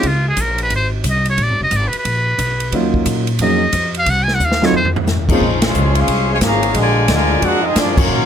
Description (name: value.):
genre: jazz, big band swing.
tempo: 179 BPM.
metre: 4/4.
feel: swing 64% on 8ths.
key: Bb minor.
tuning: A4 = 438 Hz.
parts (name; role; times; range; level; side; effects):
trumpet with metal mute; melody; 0.0-4.9 s; F4 to Ab5; -17 LUFS; equal; none.
warm concert grand piano; accompaniment; 0.0, 2.7-5.4 s; Gb3 to Ab4; -17 LUFS; right 1 dB; none.
upright bass; bass; 0.0-8.3 s; F1 to Bb2; -19 LUFS; equal; none.
swinging big-band drum kit; drums; 0.0-8.0 s; crash cymbal, hi-hat, kick drum, ride cymbal, snare drum, toms; -20 LUFS; equal; none.
clear trumpet section; melody; 5.3-8.3 s; Ab3 to Bb5; -18 LUFS; left 1 dB; none.
warm trombone section; second line; 5.3-8.3 s; Db3 to Gb4; -20 LUFS; left 1 dB; none.
bright saxophone section; sustained chords; 5.4-8.3 s; Bb2 to F4; -27 LUFS; equal; none.
room: little or no reverb.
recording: close, detailed microphones.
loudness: -13 LUFS.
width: side -9 dB against mid.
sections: 0.0-5.4 A section; 5.4-8.3 B section.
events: muted trumpet solo 0.0-5.4; drum fill 4.4-5.1; band accent 5.6, 7.9.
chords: 0.0 Db5; 1.4 Bb5; 2.7 Ebm9; 4.1 Cdim; 4.7 F5; 5.4 Bbm9; 6.8 Bb7b13.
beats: | 0.04 0.38 0.72 1.05 | 1.39 1.72 2.06 2.39 | 2.73 3.06 3.40 3.74 | 4.07 4.41 4.75 5.08 | 5.42 5.75 6.09 6.42 | 6.76 7.10 7.43 7.77 | 8.11.